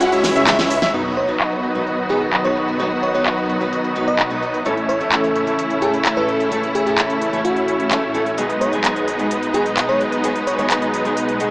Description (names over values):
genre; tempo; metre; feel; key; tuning
EDM, festival progressive house; 129 BPM; 4/4; straight; unclear; A4 = 441 Hz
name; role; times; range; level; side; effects
bell-like FM electric piano; melody; 0.0-10.7 s; F#4 to D#5; -23 LUFS; equal; chorus, digital delay
clear symphonic string section; sustained chords; 0.0-11.5 s; B2 to F#4; -26 LUFS; equal; none
warm grand piano; arpeggios; 0.0-0.9 s; E5 to F#5; -23 LUFS; equal; low-pass filter, digital delay
supersaw chords; riff; 0.0-11.5 s; F#3 to F#5; -20 LUFS; equal; low-pass filter, digital delay
wide detuned saw bass; bass; 0.0-11.5 s; A1 to C#2; -31 LUFS; equal; chorus, tube saturation
big-room dance drum kit; drums; 0.0-11.5 s; handclaps, hi-hat, shaker, snare drum; -22 LUFS; equal; low-pass filter on hats, studio reverb, low-pass filter on perc, low-pass filter on snare
fingerpicked steel-string acoustic guitar; accompaniment; 0.9-11.5 s; A2 to B4; -25 LUFS; equal; none
sub drop; sound effects; 0.9-2.8 s; none; -40 LUFS; equal; none
room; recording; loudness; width
moderate huge ambient reverb, RT60 4.5 s; small speaker sound; -16 LUFS; side -24 dB against mid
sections
0.9-11.5 A section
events
drum fill 0.2-0.9; band accent 0.8; impact 0.9-2.8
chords
0.0 C#m; 0.9 B; 4.7 A; 8.4 G#m/B